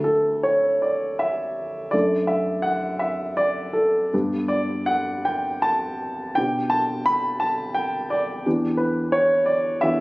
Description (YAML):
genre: classical, romantic character piece for solo piano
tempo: 76-88 BPM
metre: 3/4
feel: rubato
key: D major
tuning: A4 = 439 Hz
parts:
  - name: warm baby grand piano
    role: solo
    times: 0.0-10.0 s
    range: D2 to B5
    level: -20 LUFS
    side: equal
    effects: none
room: moderate recital hall reverb, RT60 1.5 s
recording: recorded on a phone in the room, studio reverb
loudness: -20 LUFS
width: side -22 dB against mid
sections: 0.0-10.0 A section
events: none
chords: 0.0 D; 1.9 D/F#; 4.1 G; 6.4 G/B; 8.5 Em7